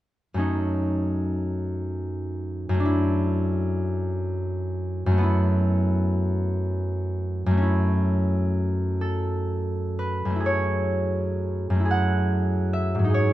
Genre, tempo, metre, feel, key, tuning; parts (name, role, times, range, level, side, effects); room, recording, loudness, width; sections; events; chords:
classical, solo harp piece; 39-52 BPM (dotted quarters); 6/8; rubato; F# minor; A4 = 440 Hz
concert harp; solo; 0.3-13.3 s; F#2 to F#5; -22 LUFS; equal
moderate large studio reverb, RT60 1.4 s; dark, warm production; -22 LUFS; side -14 dB against mid
0.4-10.5 A section; 10.5-13.3 B section
0.4 F#m6; 2.9 E9sus4/F#; 5.3 F#m7; 7.7 A/F#; 10.5 F#m9